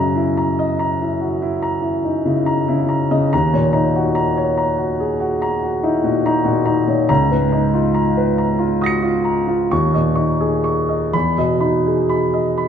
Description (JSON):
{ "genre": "classical, impressionist solo piano", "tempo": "41-49 BPM (dotted quarters)", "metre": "9/8", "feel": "rubato", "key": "unclear", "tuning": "A4 = 443 Hz", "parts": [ { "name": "warm concert grand piano", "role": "solo", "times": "0.0-12.7 s", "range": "C#2 to C#7", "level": "-15 LUFS", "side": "equal", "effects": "none" } ], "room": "wet scoring stage reverb, RT60 1.8 s", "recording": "none", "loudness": "-15 LUFS", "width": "side -8 dB against mid", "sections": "0.0-12.7 A section", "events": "none", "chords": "0.0 F#6; 3.3 D#m7; 7.1 C#13; 9.7 D#7sus4; 11.1 Emaj7", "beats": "0.80 2.05 | 3.32 4.57 5.84 | 7.09 8.38 9.71 | 11.14 12.57" }